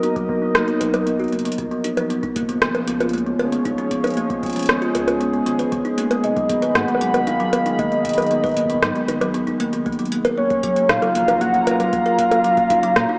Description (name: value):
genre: IDM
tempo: 116 BPM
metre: 4/4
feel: straight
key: unclear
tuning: A4 = 439 Hz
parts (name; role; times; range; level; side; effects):
- warbly tape-like pad; sustained chords; 0.0-13.2 s; C#3 to B5; -27 LUFS; equal; chorus, built-in reverb
- kalimba; arpeggios; 0.0-13.2 s; B2 to B4; -25 LUFS; equal; vintage 12-bit sampler grit, low-pass filter, tape echo
- electro analog drum machine; drums; 0.0-13.1 s; bongos, hi-hat, rim click; -25 LUFS; equal; none
- electronic kick drum; drums; 0.2-12.8 s; none; -36 LUFS; equal; none
- round analog bass; bass; 0.5-13.1 s; D#1 to A#2; -37 LUFS; equal; none
- warbly nostalgic lead; melody; 6.2-13.2 s; C#5 to F#5; -22 LUFS; equal; chorus
room: wet lush hall reverb, RT60 2.6 s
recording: worn, warbling old tape, cassette tape, warbly pitch drift, small speaker sound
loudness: -20 LUFS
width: mono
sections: 0.0-13.2 A section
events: filter sweep on kalimba 0.0-13.2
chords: 0.0 Bmaj7; 1.6 C#; 5.7 G#m; 9.9 F#maj7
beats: 0.03 0.55 1.07 | 1.58 2.10 2.62 3.13 | 3.65 4.17 4.69 5.20 | 5.72 6.24 6.75 7.27 | 7.79 8.31 8.82 9.34 | 9.86 10.38 10.89 11.41 | 11.93 12.45 12.96